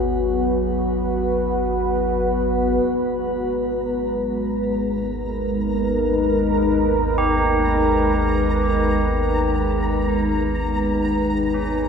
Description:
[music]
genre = ambient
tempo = free time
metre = none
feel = none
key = G# harmonic minor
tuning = A4 = 439 Hz
[part]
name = deep dark ambient pad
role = sustained chords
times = 0.0-11.9 s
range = G#3 to B4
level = -20 LUFS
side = equal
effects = chorus, built-in reverb, shimmer reverb
[part]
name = tubular bells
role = arpeggios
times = 0.0-11.9 s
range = C#4 to G4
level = -28 LUFS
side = right 2 dB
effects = ping-pong delay, shimmer reverb
[part]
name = deep rumbling drone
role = drone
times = 0.0-11.9 s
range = G#1 to D#2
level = -26 LUFS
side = equal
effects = built-in reverb
[part]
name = flickering grainy texture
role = texture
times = 0.0-11.9 s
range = G#4 to A#5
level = -33 LUFS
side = left 1 dB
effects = built-in reverb, shimmer reverb
[sound]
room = wet cathedral reverb, RT60 5.7 s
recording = dreamy mix soaked in reverb, nothing above 10.4 kHz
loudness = -18 LUFS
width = side -6 dB against mid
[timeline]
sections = 0.0-2.8 A section; 2.8-11.9 B section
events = fade-in on synth texture 2.8-11.9; filter sweep on synth drone 2.8-11.9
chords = 0.0 B5; 2.8 G#m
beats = free time

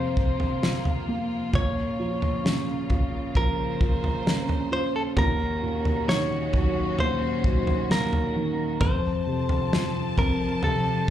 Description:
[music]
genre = pop ballad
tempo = 66 BPM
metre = 4/4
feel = straight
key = Bb harmonic minor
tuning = A4 = 440 Hz
[part]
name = direct-recorded clean electric guitar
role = melody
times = 0.0-11.1 s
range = A4 to Db5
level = -30 LUFS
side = left 1 dB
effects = warbly pitch drift, slapback echo, tape echo
[part]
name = felt-muted upright piano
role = accompaniment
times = 0.0-11.1 s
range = Eb2 to F4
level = -28 LUFS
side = equal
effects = slapback echo
[part]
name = clear studio string section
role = sustained chords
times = 0.0-11.1 s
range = C3 to A5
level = -34 LUFS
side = equal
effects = none
[part]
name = loose indie drum kit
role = drums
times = 0.2-10.8 s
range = kick drum, snare drum, toms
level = -25 LUFS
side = equal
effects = none
[sound]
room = light reverb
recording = live gig heard through the venue's PA, club reverb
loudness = -23 LUFS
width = side -11 dB against mid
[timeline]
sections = 0.0-11.1 A section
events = none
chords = 0.0 Fsus4; 1.5 Bbm; 5.2 Ebm7; 8.8 F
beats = 0.63 | 1.54 2.45 3.36 4.26 | 5.17 6.08 6.99 7.90 | 8.81 9.72 10.63

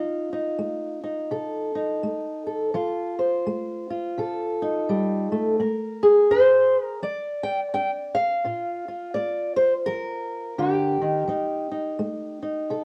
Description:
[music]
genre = acoustic country blues, solo or duo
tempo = 84 BPM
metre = 4/4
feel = swing 60% on 8ths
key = F mixolydian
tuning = A4 = 439 Hz
[part]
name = fingerpicked old ladder-braced acoustic guitar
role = solo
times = 0.0-12.8 s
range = Bb2 to G5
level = -25 LUFS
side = equal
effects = none
[sound]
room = moderate studio reverb, RT60 0.6 s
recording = worn, warbling old tape, cassette tape, warbly pitch drift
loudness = -25 LUFS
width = mono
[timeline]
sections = 0.0-12.8 A section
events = none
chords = 0.0 F7; 5.6 Bb7; 11.3 F7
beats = 0.58 1.30 2.02 | 2.73 3.45 4.17 4.88 | 5.59 6.31 7.02 7.73 | 8.44 9.15 9.86 10.57 | 11.28 11.98 12.69

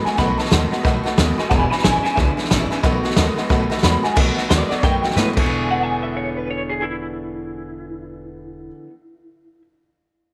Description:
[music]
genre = rockabilly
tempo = 180 BPM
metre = 4/4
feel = swing 61% on 8ths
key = E mixolydian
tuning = A4 = 441 Hz
[part]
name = electric guitar through a small old amp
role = melody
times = 0.0-9.6 s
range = E4 to B5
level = -27 LUFS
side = equal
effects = tremolo, tape echo
[part]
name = picked steel-string acoustic guitar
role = accompaniment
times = 0.0-9.0 s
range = E2 to G#4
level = -30 LUFS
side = equal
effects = none
[part]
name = electric guitar through a small old amp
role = riff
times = 0.0-8.9 s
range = E2 to C#5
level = -29 LUFS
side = equal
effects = none
[part]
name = honky-tonk upright piano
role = accompaniment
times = 0.1-8.7 s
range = B4 to G#5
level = -30 LUFS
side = equal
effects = none
[part]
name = upright bass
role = bass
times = 0.1-8.7 s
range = E1 to A2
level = -26 LUFS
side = equal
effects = none
[part]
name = vintage drum kit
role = drums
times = 0.1-5.4 s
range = crash cymbal, hi-hat, kick drum, snare drum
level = -22 LUFS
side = equal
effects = none
[sound]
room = light reverb, small room ambience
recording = none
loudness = -19 LUFS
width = mono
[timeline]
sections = 0.0-4.2 A section; 4.2-5.5 B section; 5.5-8.2 C section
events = drum fill 5.2-5.5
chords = 0.0 B7; 1.5 E7; 2.8 B7; 5.3 E6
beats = | 0.18 0.52 0.85 1.18 | 1.51 1.84 2.17 2.51 | 2.84 3.17 3.50 3.83 | 4.17 4.50 4.83 5.16 | 5.50 5.83 6.16 6.50 | 6.83 7.16 7.50 7.83

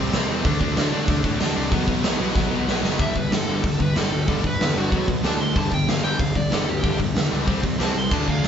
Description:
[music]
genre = punk rock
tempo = 188 BPM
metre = 4/4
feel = straight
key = unclear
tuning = A4 = 440 Hz
[part]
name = distorted electric guitar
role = riff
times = 0.0-8.5 s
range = G2 to D4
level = -27 LUFS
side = left 6 dB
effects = overdrive
[part]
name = distorted electric guitar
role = riff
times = 0.0-8.5 s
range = G2 to D4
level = -33 LUFS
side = right 1 dB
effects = none
[part]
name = sludgy distorted guitar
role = riff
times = 0.0-8.5 s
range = G2 to D4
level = -28 LUFS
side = right 6 dB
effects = overdrive
[part]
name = fuzz picked electric bass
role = bass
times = 0.0-8.5 s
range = F#1 to D3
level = -28 LUFS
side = equal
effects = overdrive
[part]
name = big rock drum kit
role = drums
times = 0.1-8.5 s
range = crash cymbal, hi-hat, kick drum, snare drum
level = -22 LUFS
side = equal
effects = none
[part]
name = dark smooth lead guitar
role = melody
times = 3.0-8.5 s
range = F#4 to C6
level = -28 LUFS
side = right 1 dB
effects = overdrive
[sound]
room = light reverb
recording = band playing live in one room, nothing above 7.7 kHz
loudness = -19 LUFS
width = side -8 dB against mid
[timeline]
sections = 0.0-3.0 A section; 3.0-8.5 B section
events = drum fill 2.4-3.0; lead electric guitar solo 3.0-8.5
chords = 0.4 D5; 1.7 B5; 3.0 G; 4.9 B5; 5.2 D5; 5.6 G5; 7.5 C5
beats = 0.13 | 0.45 0.76 1.08 1.40 | 1.72 2.04 2.36 2.68 | 3.00 3.32 3.64 3.96 | 4.28 4.60 4.92 5.24 | 5.56 5.88 6.20 6.51 | 6.83 7.16 7.47 7.79 | 8.11 8.43

